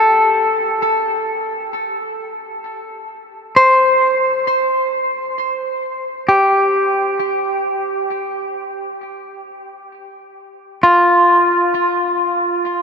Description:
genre	ambient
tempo	free time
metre	none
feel	none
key	unclear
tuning	A4 = 440 Hz
part	clean electric guitar	solo	0.0-12.8 s	F4 to C5	-14 LUFS	equal	tape echo
room	wet huge ambient reverb, RT60 9.4 s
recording	none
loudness	-14 LUFS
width	side -6 dB against mid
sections	0.0-5.4 A section; 5.4-12.8 B section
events	none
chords	0.0 C5; 5.4 Fsus2

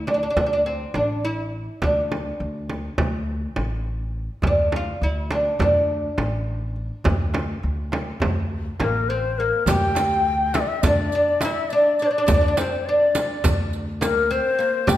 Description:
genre	Turkish makam ensemble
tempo	206 BPM (eighths)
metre	9/8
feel	straight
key	D makam ussak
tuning	A4 = 440 Hz
part	oud	melody	0.0-15.0 s	Bb3 to G4	-22 LUFS	equal	none
part	upright bass	bass	0.0-15.0 s	A1 to D2	-26 LUFS	equal	none
part	frame drum	percussion	0.1-15.0 s	none	-26 LUFS	right 1 dB	none
part	darbuka	percussion	4.4-15.0 s	none	-29 LUFS	right 1 dB	none
part	breathy bright low ney	second line	8.8-15.0 s	Bb4 to G5	-22 LUFS	left 4 dB	none
part	riq	percussion	9.7-15.0 s	none	-31 LUFS	right 5 dB	none
room	wet recital hall reverb, RT60 1.7 s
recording	none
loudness	-20 LUFS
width	side -13 dB against mid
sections	0.0-9.7 A section; 9.7-15.0 B section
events	none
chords	none

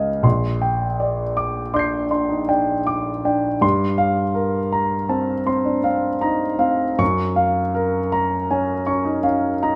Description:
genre	classical, impressionist solo piano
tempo	53 BPM (dotted quarters)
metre	9/8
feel	rubato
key	Bb major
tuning	A4 = 440 Hz
part	warm grand piano	solo	0.0-9.8 s	Bb1 to C7	-20 LUFS	equal	none
room	moderate stone room reverb, RT60 1.2 s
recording	none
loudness	-21 LUFS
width	mono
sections	0.0-9.8 A section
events	none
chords	0.2 Bb69; 3.6 Gm11; 7.0 Gbmaj7

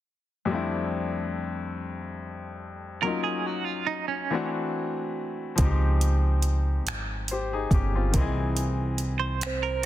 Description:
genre	slow six-eight R&B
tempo	47 BPM (dotted quarters)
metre	6/8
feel	straight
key	unclear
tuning	A4 = 440 Hz
part	bright grand piano	accompaniment	0.5-9.9 s	F2 to D#5	-30 LUFS	left 4 dB	none
part	semi-hollow electric guitar	second line	3.0-4.5, 9.2-9.8 s	Db4 to C5	-30 LUFS	right 8 dB	tremolo
part	upright bass	bass	5.6-9.9 s	G1 to Db2	-25 LUFS	equal	none
part	smooth R&B drum kit	drums	5.6-9.9 s	finger snaps, hi-hat, kick drum	-28 LUFS	equal	soft clipping on snare
part	soft octave-layered synth lead	melody	9.5-9.9 s	C5	-29 LUFS	right 6 dB	chorus
room	digital ambience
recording	dense, heavily limited modern master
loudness	-25 LUFS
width	side -13 dB against mid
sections	0.5-9.9 A section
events	none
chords	0.5 Fmaj13; 3.0 Ebm7; 4.3 D9; 5.6 Dbmaj9#11; 8.1 C7alt

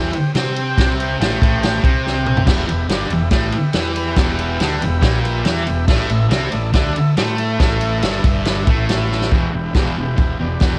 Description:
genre	garage rock duo or trio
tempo	140 BPM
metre	4/4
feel	straight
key	E minor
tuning	A4 = 444 Hz
part	combo organ	sustained chords	0.0-10.8 s	E4 to G5	-28 LUFS	equal	cassette tape
part	thick fuzz guitar	riff	0.0-10.8 s	E2 to C5	-22 LUFS	equal	distortion, cassette tape
part	fuzz fingered electric bass	bass	0.0-10.8 s	E1 to C3	-26 LUFS	equal	overdrive
part	vintage drum kit	drums	0.1-10.7 s	crash cymbal, kick drum, ride cymbal, snare drum, toms	-20 LUFS	equal	cassette tape
room	light reverb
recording	home recording on cassette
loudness	-17 LUFS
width	mono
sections	0.0-9.3 A section; 9.3-10.8 B section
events	drum fill 2.0-2.5, 9.1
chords	0.0 C5; 2.5 Em; 5.9 A5; 9.3 Em

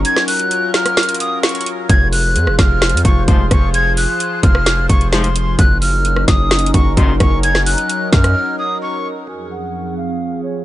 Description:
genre	hip hop, trap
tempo	130 BPM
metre	4/4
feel	half-time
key	F phrygian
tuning	A4 = 439 Hz
part	sweeping resonant pad	sustained chords	0.0-10.6 s	F2 to C5	-22 LUFS	equal	chorus, phaser, low-pass filter
part	distorted 808-style bass	bass	0.0-8.3 s	F1 to Gb2	-16 LUFS	equal	distortion
part	trap drum kit	drums	0.0-8.3 s	hi-hat, kick drum, rim click, snare drum	-15 LUFS	equal	none
part	breathy bright jazz flute	melody	0.1-10.6 s	Db5 to Ab6	-19 LUFS	equal	low-pass filter, tape echo
part	warm brass ensemble	stabs	3.3-7.1 s	Gb2 to F3	-24 LUFS	left 4 dB	none
room	digital ambience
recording	nothing above 10.4 kHz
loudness	-12 LUFS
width	side -15 dB against mid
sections	0.0-9.3 A section; 9.3-10.6 B section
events	break 0.0-1.9, 8.4-9.3; filter sweep 9.3-10.6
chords	0.0 Gb; 1.9 Fm; 5.6 Gb6; 9.3 Fm

